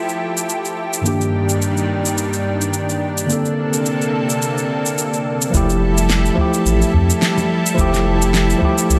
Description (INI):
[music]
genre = sunset chillout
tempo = 107 BPM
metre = 4/4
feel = swing 56% on 16ths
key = F major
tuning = A4 = 440 Hz
[part]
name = tine electric piano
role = accompaniment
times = 0.0-9.0 s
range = G2 to A4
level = -22 LUFS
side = equal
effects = overdrive, tape echo
[part]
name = lush unison pad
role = sustained chords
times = 0.0-9.0 s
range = G2 to A4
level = -24 LUFS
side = equal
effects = chorus
[part]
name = downlifter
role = sound effects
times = 0.0-1.1 s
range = none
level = barely audible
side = none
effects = none
[part]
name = electronic shaker, snare drum and congas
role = drums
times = 0.1-9.0 s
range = none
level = -24 LUFS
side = equal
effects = none
[part]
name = warm sub bass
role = bass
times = 5.5-9.0 s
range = F1 to F2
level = -20 LUFS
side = equal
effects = none
[part]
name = electronic kick drum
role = drums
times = 5.5-8.7 s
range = none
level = -21 LUFS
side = equal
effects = none
[sound]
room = moderate plate reverb, RT60 2.4 s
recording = lossy compression artefacts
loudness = -18 LUFS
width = mono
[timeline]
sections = 0.0-5.5 A section; 5.5-9.0 B section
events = none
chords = 0.0 Fmaj9; 1.1 Ebmaj7/G; 3.3 Bbmaj9; 5.5 Fmaj9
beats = 0.49 | 1.05 1.61 2.17 2.73 | 3.29 3.85 4.42 4.98 | 5.54 6.10 6.66 7.22 | 7.78 8.34 8.90